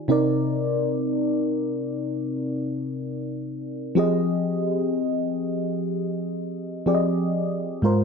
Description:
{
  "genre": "R&B",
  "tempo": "62 BPM",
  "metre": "4/4",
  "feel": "swing 58% on 16ths",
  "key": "unclear",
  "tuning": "A4 = 441 Hz",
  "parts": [
    { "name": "mellow FM electric piano", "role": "solo", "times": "0.0-8.0 s", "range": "Ab2 to Eb5", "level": "-22 LUFS", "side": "left 1 dB", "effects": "chorus, phaser" }
  ],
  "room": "light reverb, digital ambience",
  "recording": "dark, warm production",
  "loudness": "-23 LUFS",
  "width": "side -5 dB against mid",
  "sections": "0.0-8.0 A section",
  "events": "none",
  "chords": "0.1 Cm7; 4.0 Fm7",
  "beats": "| 0.10 1.06 2.03 3.00 | 3.97 4.93 5.90 6.87 | 7.84"
}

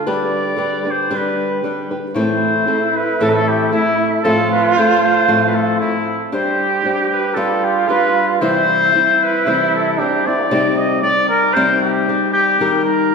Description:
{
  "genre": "mexican folk, mariachi",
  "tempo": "115 BPM",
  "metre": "2/4",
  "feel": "straight",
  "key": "C major",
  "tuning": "A4 = 439 Hz",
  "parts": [
    { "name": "nylon-string guitar", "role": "accompaniment", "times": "0.0-13.1 s", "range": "A2 to D5", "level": "-18 LUFS", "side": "left 2 dB", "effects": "none" },
    { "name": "clear trumpet", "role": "melody", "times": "0.1-13.1 s", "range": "E4 to Eb5", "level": "-17 LUFS", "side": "left 2 dB", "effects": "none" },
    { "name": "mellow trumpet", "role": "second line", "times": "2.1-10.5 s", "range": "C4 to G4", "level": "-18 LUFS", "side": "right 5 dB", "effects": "none" }
  ],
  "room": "wet scoring stage reverb, RT60 2.0 s",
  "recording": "recorded in a church or concert hall",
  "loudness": "-14 LUFS",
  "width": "side -5 dB against mid",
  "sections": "0.0-10.5 A section; 10.5-13.1 B section",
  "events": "none",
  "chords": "0.1 G; 2.2 Am; 4.2 F/A; 6.3 Gsus4; 7.4 G; 8.4 C; 10.5 Cmadd9; 12.6 Eb",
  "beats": "| 0.07 0.59 | 1.11 1.64 | 2.16 2.68 | 3.20 3.72 | 4.23 4.75 | 5.28 5.80 | 6.32 6.84 | 7.36 7.88 | 8.40 8.93 | 9.45 9.98 | 10.51 11.04 | 11.56 12.09 | 12.61 13.13"
}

